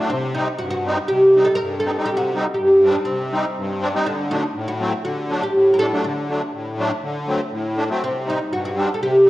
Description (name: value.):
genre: klezmer.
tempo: 121 BPM.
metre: 4/4.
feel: straight.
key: unclear.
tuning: A4 = 439 Hz.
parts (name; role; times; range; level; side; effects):
musette accordion; accompaniment; 0.0-9.3 s; G2 to Eb4; -22 LUFS; equal; none.
oud; melody; 0.1-9.3 s; C4 to Bb4; -18 LUFS; equal; none.
room: wet recital hall reverb, RT60 1.7 s.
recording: worn, warbling old tape, cassette tape, warbly pitch drift.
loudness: -18 LUFS.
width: side -16 dB against mid.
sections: 0.0-8.0 A section; 8.0-9.3 A section.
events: none.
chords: 0.1 Cm; 4.1 D; 8.0 C5.